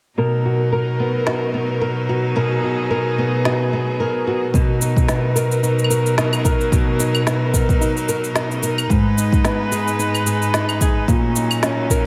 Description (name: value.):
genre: folktronica.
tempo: 110 BPM.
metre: 4/4.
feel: swing 56% on 16ths.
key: B major.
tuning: A4 = 442 Hz.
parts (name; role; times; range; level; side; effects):
clear string quartet; sustained chords; 0.2-12.1 s; G#2 to B4; -25 LUFS; equal; none.
flamenco guitar; arpeggios; 0.2-12.1 s; G#2 to A#4; -22 LUFS; equal; vintage 12-bit sampler grit, low-pass filter, digital delay.
electronic snare drum, shaker and claves; drums; 1.3-12.0 s; none; -26 LUFS; equal; none.
electronic kick drum; drums; 4.5-12.0 s; none; -21 LUFS; equal; none.
room: light reverb, digital ambience.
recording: none.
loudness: -19 LUFS.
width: mono.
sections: 0.2-4.5 A section; 4.5-12.1 B section.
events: filter sweep on nylon-string guitar 4.5-12.1.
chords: 0.2 Bmaj7; 8.9 G#m; 11.1 D#m7/A#.